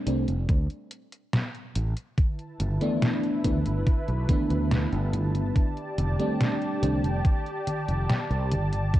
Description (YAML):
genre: vaporwave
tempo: 71 BPM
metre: 4/4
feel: straight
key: unclear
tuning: A4 = 440 Hz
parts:
  - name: FM electric piano with soft pad layer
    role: accompaniment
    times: 0.0-7.0 s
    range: E3 to D4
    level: -29 LUFS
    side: equal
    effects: analog chorus, tape echo
  - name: fretless electric bass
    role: bass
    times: 0.1-9.0 s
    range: F1 to D2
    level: -26 LUFS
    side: equal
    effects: none
  - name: detuned 8-bit digital drum machine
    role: drums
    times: 0.1-9.0 s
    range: congas, hi-hat, snare drum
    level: -30 LUFS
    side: equal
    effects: overdrive, vintage 12-bit sampler grit
  - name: electronic kick drum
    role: drums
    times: 0.5-9.0 s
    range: none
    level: -23 LUFS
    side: equal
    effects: overdrive, vintage 12-bit sampler grit
  - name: lush unison pad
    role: sustained chords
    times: 2.2-9.0 s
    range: E4 to A5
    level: -34 LUFS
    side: equal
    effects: chorus, vintage 12-bit sampler grit
room: light reverb, digital ambience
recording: dark, warm production, cassette tape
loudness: -24 LUFS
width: side -14 dB against mid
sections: 0.0-9.0 A section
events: none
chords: 0.0 F69; 2.2 G69; 5.6 F69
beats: 0.49 1.33 | 2.18 3.02 3.87 4.71 | 5.56 6.41 7.25 8.10 | 8.94